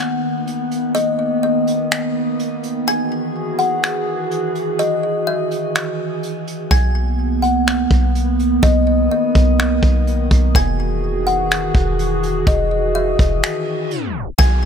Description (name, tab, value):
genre	hip hop, atmospheric cloud-rap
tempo	125 BPM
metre	4/4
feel	half-time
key	unclear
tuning	A4 = 440 Hz
part	kalimba	melody	0.0-14.7 s	D#5 to G#5	-22 LUFS	left 3 dB	digital delay
part	warbly tape-like pad	sustained chords	0.0-14.7 s	D#3 to G#4	-20 LUFS	right 1 dB	chorus, built-in reverb, sidechain pumping
part	vintage brush drum kit	drums	0.0-14.5 s	finger snaps, hi-hat, kick drum	-19 LUFS	equal	none
part	warm 808-style bass	bass	6.7-14.7 s	E1 to B1	-19 LUFS	equal	none
part	reverse cymbal and downlifter	sound effects	13.6-14.7 s	none	-32 LUFS	right 4 dB	none
room	small room ambience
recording	tape stop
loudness	-15 LUFS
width	side -7 dB against mid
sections	0.0-14.4 A section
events	break 0.0-6.7, 13.4-14.4; reverse cymbal 13.6-14.4; tape stop 13.9-14.4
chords	0.0 Bmaj7; 2.9 Emaj9; 6.7 Bmaj7; 10.5 Emaj9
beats	0.47 | 0.95 1.43 1.91 2.39 | 2.87 3.35 3.83 4.31 | 4.79 5.27 5.75 6.23 | 6.71 7.19 7.67 8.15 | 8.63 9.11 9.59 10.07 | 10.55 11.03 11.51 11.99 | 12.47 12.95 13.43 13.91 | 14.39